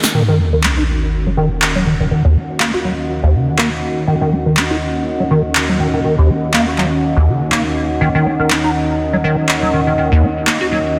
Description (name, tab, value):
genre	acid house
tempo	122 BPM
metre	4/4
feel	swing 56% on 16ths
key	Eb minor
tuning	A4 = 440 Hz
part	warm analog pad	sustained chords	0.0-11.0 s	Eb2 to Ab4	-22 LUFS	equal	lush chorus
part	electro analog drum machine	drums	0.0-10.6 s	handclaps, hi-hat, snare drum	-21 LUFS	equal	none
part	liquid acid bass	riff	0.1-10.8 s	Eb2 to Gb4	-18 LUFS	equal	phaser, ensemble chorus, dub echo
part	sub drop	sound effects	0.1-2.1 s	none	-20 LUFS	equal	none
part	deep dark ambient pad	texture	1.2-11.0 s	Db4 to Gb5	-26 LUFS	equal	chorus, built-in reverb
room	moderate lush hall reverb, RT60 2.4 s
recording	dense, heavily limited modern master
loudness	-15 LUFS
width	mono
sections	0.1-11.0 A section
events	impact 0.1-2.1; filter sweep on acid bass 0.1-11.0; filter sweep on analog synth pad 0.1-11.0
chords	0.1 Ebm7